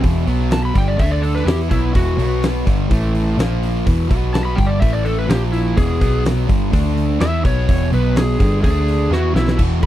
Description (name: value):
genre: blues rock power trio and southern rock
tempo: 126 BPM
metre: 4/4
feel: straight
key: unclear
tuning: A4 = 439 Hz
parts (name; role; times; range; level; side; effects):
- fuzz guitar; riff; 0.0-9.9 s; E2 to E4; -20 LUFS; equal; distortion
- vintage muted picked electric bass; bass; 0.0-9.9 s; E1 to E2; -19 LUFS; equal; none
- huge arena drum kit; drums; 0.0-9.9 s; crash cymbal, hi-hat, kick drum, snare drum; -19 LUFS; equal; none
- overdriven slide guitar; melody; 0.5-9.9 s; E4 to B5; -23 LUFS; equal; slapback echo
room: little or no reverb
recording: dry, close 1970s-style studio recording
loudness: -14 LUFS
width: side -13 dB against mid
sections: 0.0-9.6 A section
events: electric slide guitar solo 0.0-9.9; drum fill 9.1-9.6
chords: 0.3 B5; 0.8 G5; 1.0 D5; 1.5 E5; 2.2 B5; 2.7 G5; 2.9 A5; 3.4 A#5; 3.9 E5; 4.1 B5; 4.6 G5; 4.8 A5; 5.3 A#5; 5.8 E; 6.0 B5; 6.5 G5; 6.7 D5; 7.2 E5; 7.9 B5; 8.4 G5; 8.6 D5; 9.1 E5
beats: | 0.03 0.51 0.99 1.47 | 1.95 2.43 2.91 3.38 | 3.86 4.34 4.82 5.29 | 5.77 6.25 6.73 7.20 | 7.68 8.16 8.64 9.11 | 9.59